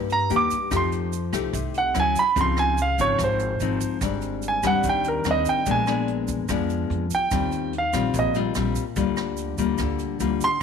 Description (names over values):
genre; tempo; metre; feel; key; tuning
bossa nova; 145 BPM; 4/4; straight; unclear; A4 = 441 Hz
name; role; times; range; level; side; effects
nylon-string guitar; accompaniment; 0.0-10.6 s; G2 to G4; -26 LUFS; left 10 dB; none
upright bass; bass; 0.0-10.4 s; Ab1 to G2; -28 LUFS; right 2 dB; tube saturation
warm concert grand piano; melody; 0.1-10.6 s; Bb4 to D6; -23 LUFS; right 4 dB; none
jazz brush drum kit; drums; 0.1-10.6 s; hi-hat, kick drum, rim click; -35 LUFS; right 3 dB; none
tube shaker; percussion; 0.1-10.6 s; none; -40 LUFS; right 17 dB; none
room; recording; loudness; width
light reverb, small room ambience; 1960s-style stereo with parts hard left and right; -21 LUFS; side -6 dB against mid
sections
0.0-10.6 A section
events
grand piano solo 0.0-10.6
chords
0.0 Cm7 (rootless); 0.7 F9; 1.9 Dmaj9; 2.4 Dbmaj9; 4.0 Abmaj7#11; 5.7 Bb7b9; 7.3 Eb69; 9.0 Gm7/D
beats
0.30 | 0.71 1.12 1.54 1.95 | 2.36 2.77 3.19 3.60 | 4.01 4.42 4.84 5.25 | 5.66 6.08 6.49 6.90 | 7.32 7.73 8.14 8.55 | 8.97 9.38 9.79 10.21 | 10.62